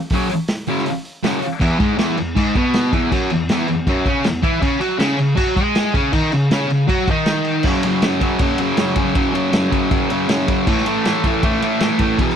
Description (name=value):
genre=garage rock duo or trio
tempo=159 BPM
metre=4/4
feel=straight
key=unclear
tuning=A4 = 440 Hz
part: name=thick fuzz guitar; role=riff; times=0.1-12.4 s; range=E2 to G#4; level=-17 LUFS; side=equal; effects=distortion
part: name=vintage drum kit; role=drums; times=0.1-12.3 s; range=crash cymbal, hi-hat, kick drum, ride cymbal, snare drum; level=-20 LUFS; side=equal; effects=none
room=studio ambience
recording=none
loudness=-15 LUFS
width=side -8 dB against mid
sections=0.0-1.6 A section; 1.6-7.6 B section; 7.6-12.4 C section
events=none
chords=0.0 F#5; 1.6 E5; 4.6 C#5; 7.6 F#5; 10.7 A5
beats=| 0.11 0.49 0.86 1.24 | 1.62 1.99 2.37 2.75 | 3.12 3.50 3.88 4.25 | 4.63 5.01 5.38 5.76 | 6.14 6.51 6.89 7.27 | 7.65 8.02 8.40 8.78 | 9.16 9.53 9.91 10.29 | 10.67 11.04 11.42 11.80 | 12.18